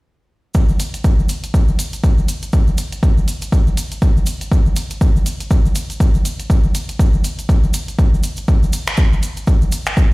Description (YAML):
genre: house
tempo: 121 BPM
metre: 4/4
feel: swing 58% on 16ths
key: none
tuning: none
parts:
  - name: deep house drum kit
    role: drums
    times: 0.5-10.1 s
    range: finger snaps, hi-hat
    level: -26 LUFS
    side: equal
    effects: overdrive
  - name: electronic kick drum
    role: drums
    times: 0.5-10.1 s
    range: none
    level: -13 LUFS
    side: equal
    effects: overdrive
  - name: tube shaker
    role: percussion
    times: 0.5-10.1 s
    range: none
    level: -31 LUFS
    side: right 2 dB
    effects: none
room: little or no reverb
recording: played on a big sound system in a bare room, stone room reverb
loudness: -14 LUFS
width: side -22 dB against mid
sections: 0.5-10.1 A section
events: none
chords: none